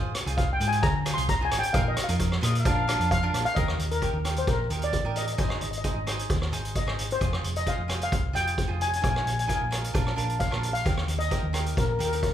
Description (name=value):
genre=calypso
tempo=132 BPM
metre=4/4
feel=straight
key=Eb major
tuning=A4 = 440 Hz
part: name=cavaquinho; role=accompaniment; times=0.0-12.2 s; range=D4 to C5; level=-34 LUFS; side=right 4 dB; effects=none
part: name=hollow-body short-scale fingered electric bass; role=bass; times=0.0-12.3 s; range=F1 to Bb2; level=-29 LUFS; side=equal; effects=none
part: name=street-band drum kit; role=drums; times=0.1-12.3 s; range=hi-hat, kick drum, rim click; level=-28 LUFS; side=equal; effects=none
part: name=steel pan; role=melody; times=0.4-12.3 s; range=Bb4 to C6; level=-29 LUFS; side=left 2 dB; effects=none
part: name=warm trumpet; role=second line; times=2.4-3.5 s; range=Eb5 to F5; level=-32 LUFS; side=left 6 dB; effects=none
room=moderate large studio reverb, RT60 0.8 s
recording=band playing live in one room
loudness=-24 LUFS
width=side -10 dB against mid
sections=0.0-3.6 A section; 3.6-12.3 B section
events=steel pan solo 0.0-3.6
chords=0.0 Fm/Ab; 1.7 Bbsus4; 2.7 Bb; 3.6 Eb; 5.4 Ab; 7.2 Fm; 9.0 Bbsus4; 9.9 Bb; 10.9 Eb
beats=0.37 0.83 1.28 | 1.74 2.19 2.65 3.11 | 3.56 4.02 4.47 4.93 | 5.39 5.84 6.30 6.75 | 7.21 7.67 8.12 8.58 | 9.03 9.49 9.94 10.40 | 10.86 11.31 11.77 12.22